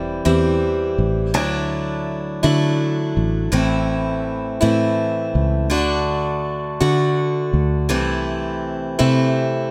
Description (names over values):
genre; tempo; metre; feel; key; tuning
acoustic folk duo or small band; 55 BPM (dotted quarters); 6/8; straight; unclear; A4 = 438 Hz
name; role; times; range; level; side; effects
picked acoustic archtop guitar; accompaniment; 0.0-9.7 s; A2 to F#4; -22 LUFS; equal; none
fingered electric bass; bass; 0.0-9.7 s; E1 to D3; -23 LUFS; equal; none
room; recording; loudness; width
light reverb; none; -20 LUFS; mono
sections
0.0-9.7 A section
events
none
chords
0.0 C/E; 1.3 Dadd9; 3.5 Am; 5.7 D; 7.9 Am/C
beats
0.25 | 1.34 2.43 | 3.53 4.62 | 5.71 6.81 | 7.90 8.99